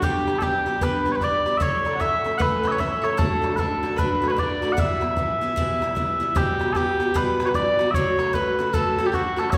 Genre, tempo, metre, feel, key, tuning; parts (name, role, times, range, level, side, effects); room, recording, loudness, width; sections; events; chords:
celtic folk, Celtic hornpipe; 152 BPM; 4/4; swing 63% on 8ths; E dorian; A4 = 440 Hz
mellow small bagpipes; melody; 0.0-9.6 s; F#4 to F#5; -26 LUFS; equal
mandolin; second line; 0.0-9.6 s; F#4 to E5; -34 LUFS; equal
mellow accordion; second line; 0.0-9.6 s; F#4 to F#5; -32 LUFS; equal
picked steel-string acoustic guitar; accompaniment; 0.0-9.6 s; E2 to A4; -29 LUFS; equal
bodhran; percussion; 0.0-9.6 s; -29 LUFS; equal
wet scoring stage reverb, RT60 1.5 s; recorded in a church or concert hall; -22 LUFS; mono
0.0-6.4 A section; 6.4-9.6 A section
0.0 G; 1.6 A; 3.2 D; 4.8 Em; 6.4 Emadd9; 7.9 F#m